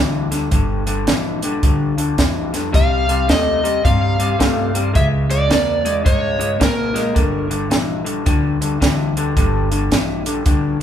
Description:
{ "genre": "electric blues shuffle", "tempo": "109 BPM", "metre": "4/4", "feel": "swing 63% on 8ths", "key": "G minor", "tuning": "A4 = 440 Hz", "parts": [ { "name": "electric guitar through a small old amp", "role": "riff", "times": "0.0-10.8 s", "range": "G2 to A#3", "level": "-21 LUFS", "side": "left 2 dB", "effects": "none" }, { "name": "upright bass", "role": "bass", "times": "0.0-10.8 s", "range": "G1 to A#2", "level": "-21 LUFS", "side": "equal", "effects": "none" }, { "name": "compact cocktail drum kit", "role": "drums", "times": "0.3-10.6 s", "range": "hi-hat, kick drum, snare drum", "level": "-19 LUFS", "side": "equal", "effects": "none" }, { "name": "overdriven slide guitar", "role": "melody", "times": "2.8-7.5 s", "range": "A#4 to F5", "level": "-20 LUFS", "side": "equal", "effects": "none" } ], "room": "moderate large studio reverb, RT60 1.3 s", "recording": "band playing live in one room", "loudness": "-15 LUFS", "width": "side -9 dB against mid", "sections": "0.0-10.8 A section", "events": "none", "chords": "0.0 Gm7; 2.7 Cm; 5.0 C#dim7; 7.2 Gm" }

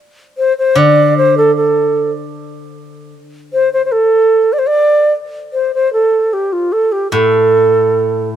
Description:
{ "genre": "chinese traditional, Chinese chamber ensemble", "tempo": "75 BPM", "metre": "2/4", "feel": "straight", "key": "D yu mode", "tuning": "A4 = 443 Hz", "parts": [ { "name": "bright low xiao", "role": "melody", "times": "0.4-8.3 s", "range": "F4 to D5", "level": "-11 LUFS", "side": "right 1 dB", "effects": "none" }, { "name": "steel-string zither", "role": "accompaniment", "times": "0.8-3.1, 7.1-8.4 s", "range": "A2 to D3", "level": "-16 LUFS", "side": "left 2 dB", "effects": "none" } ], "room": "light reverb", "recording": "none", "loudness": "-10 LUFS", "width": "side -10 dB against mid", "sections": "0.0-5.5 A section; 5.5-8.4 B section", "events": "none", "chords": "none" }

